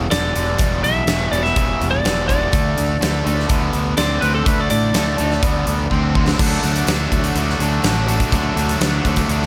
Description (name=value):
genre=classic rock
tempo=124 BPM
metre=4/4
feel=straight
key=unclear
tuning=A4 = 439 Hz
part: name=picked steel-string acoustic guitar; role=accompaniment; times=0.0-9.5 s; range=E2 to F#4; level=-31 LUFS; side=equal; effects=none
part: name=distorted electric guitar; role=riff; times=0.0-9.5 s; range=E2 to F#4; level=-27 LUFS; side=equal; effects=overdrive
part: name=distorted electric guitar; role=riff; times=0.0-9.5 s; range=E2 to D4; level=-27 LUFS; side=equal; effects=overdrive
part: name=growling fingered electric bass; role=bass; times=0.0-9.5 s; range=E1 to A2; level=-24 LUFS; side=equal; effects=overdrive
part: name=lightly driven lead guitar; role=melody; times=0.1-6.1 s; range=A4 to E5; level=-24 LUFS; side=equal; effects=none
part: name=huge arena drum kit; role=drums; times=0.1-9.5 s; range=crash cymbal, hi-hat, kick drum, snare drum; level=-23 LUFS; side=equal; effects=none
part: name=tambourine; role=percussion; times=6.6-9.5 s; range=none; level=-39 LUFS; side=equal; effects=none
room=light reverb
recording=none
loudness=-18 LUFS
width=mono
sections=0.0-6.4 A section; 6.4-9.5 B section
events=lead electric guitar solo 0.0-6.4; drum fill 5.9-6.4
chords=0.0 Em; 2.5 D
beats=0.11 | 0.60 1.08 1.56 2.05 | 2.53 3.01 3.50 3.98 | 4.46 4.95 5.43 5.91 | 6.39 6.88 7.36 7.84 | 8.33 8.81 9.29